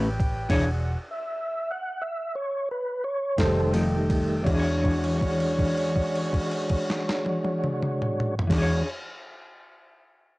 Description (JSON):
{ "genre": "slow blues", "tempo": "54-67 BPM (dotted quarters)", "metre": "12/8", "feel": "straight", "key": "E mixolydian", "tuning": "A4 = 440 Hz", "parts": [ { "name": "mellow electric guitar", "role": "accompaniment", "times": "0.0-8.9 s", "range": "E3 to C#5", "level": "-28 LUFS", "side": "left 1 dB", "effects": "tremolo, cassette tape" }, { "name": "mellow horn section", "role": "sustained chords", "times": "0.0-8.8 s", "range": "C#4 to G5", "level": "-35 LUFS", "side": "right 1 dB", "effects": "cassette tape" }, { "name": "vintage muted fingered electric bass", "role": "bass", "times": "0.0-8.8 s", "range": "E1 to E2", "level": "-28 LUFS", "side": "equal", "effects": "none" }, { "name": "boom bap sampler-style drum kit", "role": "drums", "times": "0.2-8.7 s", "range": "crash cymbal, kick drum, ride cymbal, snare drum, toms", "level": "-29 LUFS", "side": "equal", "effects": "overdrive, cassette tape" }, { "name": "mellow tonewheel organ", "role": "sustained chords", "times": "1.1-8.8 s", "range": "Eb3 to F#5", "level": "-28 LUFS", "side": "equal", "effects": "slow rotary speaker, chorus vibrato, cassette tape" } ], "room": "light reverb, digital ambience", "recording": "home recording on cassette", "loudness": "-23 LUFS", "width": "side -21 dB against mid", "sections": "0.0-4.5 A section; 4.5-8.9 B section", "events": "slowing down 0.0-4.5; tonewheel organ solo 0.0-4.5; stop 0.5-3.4; held note 4.5-8.5", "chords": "0.0 A9; 0.5 E13; 3.4 F9; 4.5 E13" }